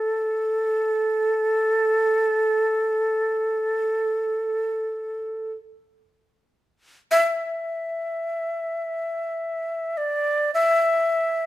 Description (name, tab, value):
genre	japanese traditional, Japanese chamber music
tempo	free time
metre	none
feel	none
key	unclear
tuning	A4 = 440 Hz
part	breathy shakuhachi	solo	0.0-11.5 s	A4 to E5	-21 LUFS	equal	none
room	light reverb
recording	close, detailed microphones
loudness	-21 LUFS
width	side -15 dB against mid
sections	0.0-11.5 A section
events	none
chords	none